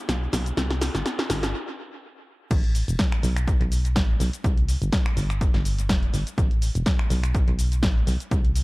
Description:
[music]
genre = piano house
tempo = 124 BPM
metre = 4/4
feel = swing 55% on 16ths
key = A minor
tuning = A4 = 440 Hz
[part]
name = solid FM bass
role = bass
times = 0.1-8.6 s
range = E1 to C2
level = -24 LUFS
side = equal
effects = tube saturation, sidechain pumping
[part]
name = punchy analog drum machine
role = drums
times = 0.1-8.6 s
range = cabasa, crash cymbal, finger snaps, hi-hat, snare drum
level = -28 LUFS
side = equal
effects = dub echo
[part]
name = electronic kick drum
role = drums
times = 2.5-8.4 s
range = none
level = -23 LUFS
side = equal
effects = none
[sound]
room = light reverb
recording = echo-heavy mix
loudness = -21 LUFS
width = side -22 dB against mid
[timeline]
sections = 0.0-2.5 A section; 2.5-8.6 B section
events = build-up 0.0-2.5; drum fill 0.0-1.5; stop 1.5-2.5; drop 2.5-8.6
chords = none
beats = 0.09 | 0.57 1.06 1.54 2.02 | 2.51 2.99 3.48 3.96 | 4.44 4.93 5.41 5.89 | 6.38 6.86 7.35 7.83 | 8.31

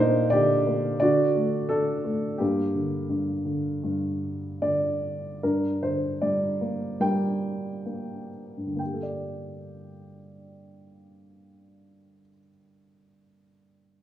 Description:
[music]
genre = classical, lyrical solo piano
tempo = 61-88 BPM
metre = 4/4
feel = rubato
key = G minor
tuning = A4 = 441 Hz
[part]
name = dark upright piano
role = solo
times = 0.0-14.0 s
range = G2 to G5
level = -24 LUFS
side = equal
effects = none
[sound]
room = wet recital hall reverb, RT60 1.4 s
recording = recorded in a church or concert hall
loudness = -24 LUFS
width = side -11 dB against mid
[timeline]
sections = 0.0-5.4 A section; 5.4-8.8 B section; 8.8-12.6 C section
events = slowing down 2.4-8.8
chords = 0.0 Gm; 1.0 D; 2.4 Gm; 8.8 Gmadd9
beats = 0.32 1.01 1.70 | 2.40 3.10 3.83 4.61 | 5.42 6.21 7.00 7.86 | 8.80 9.76 10.70 11.65

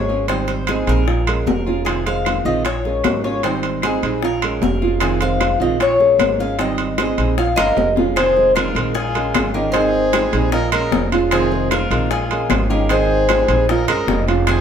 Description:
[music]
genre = latin, Cuban son and guajira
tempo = 152 BPM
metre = 4/4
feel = straight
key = unclear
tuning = A4 = 440 Hz
[part]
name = Cuban tres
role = melody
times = 0.0-14.6 s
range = Ab4 to F5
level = -20 LUFS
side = left 3 dB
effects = none
[part]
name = nylon-string guitar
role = accompaniment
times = 0.0-14.6 s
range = C3 to Ab4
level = -24 LUFS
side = right 2 dB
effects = none
[part]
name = dark baby grand piano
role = arpeggios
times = 0.0-14.6 s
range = Eb3 to G5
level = -23 LUFS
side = right 4 dB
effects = none
[part]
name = upright bass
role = bass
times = 0.0-14.6 s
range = F1 to Bb1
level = -22 LUFS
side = equal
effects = none
[part]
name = bongos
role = percussion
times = 0.1-14.6 s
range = none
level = -24 LUFS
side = left 6 dB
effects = none
[part]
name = timbales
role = percussion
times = 0.3-14.6 s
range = none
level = -24 LUFS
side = right 5 dB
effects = none
[part]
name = claves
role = percussion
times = 0.7-14.6 s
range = none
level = -32 LUFS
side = left 3 dB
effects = none
[part]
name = clear trumpet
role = second line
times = 7.6-14.6 s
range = F4 to Bb4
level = -26 LUFS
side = right 1 dB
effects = none
[sound]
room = moderate stone room reverb, RT60 1.0 s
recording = band playing live in one room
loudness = -15 LUFS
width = side -8 dB against mid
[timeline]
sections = 0.0-8.2 A section; 8.2-14.6 B section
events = drum fill 7.6-8.2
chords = 0.3 Abmaj7; 1.1 Bbm7; 1.9 Fm7; 2.6 Bbm7; 3.4 Abmaj7; 4.2 Bbm7; 5.0 Fm7; 5.8 Bbm7; 6.6 Abmaj7; 7.4 Bbm7; 8.2 Fm7; 9.0 Bbm7; 9.7 Abmaj7; 10.5 Bbm7; 11.3 Fm7; 12.1 Bbm7; 12.9 Abmaj7; 13.7 Bbm7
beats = | 0.28 0.68 1.07 1.47 | 1.86 2.26 2.65 3.04 | 3.44 3.83 4.23 4.62 | 5.01 5.41 5.80 6.20 | 6.59 6.99 7.38 7.77 | 8.17 8.56 8.96 9.35 | 9.74 10.14 10.53 10.93 | 11.32 11.72 12.11 12.50 | 12.90 13.29 13.69 14.08 | 14.48

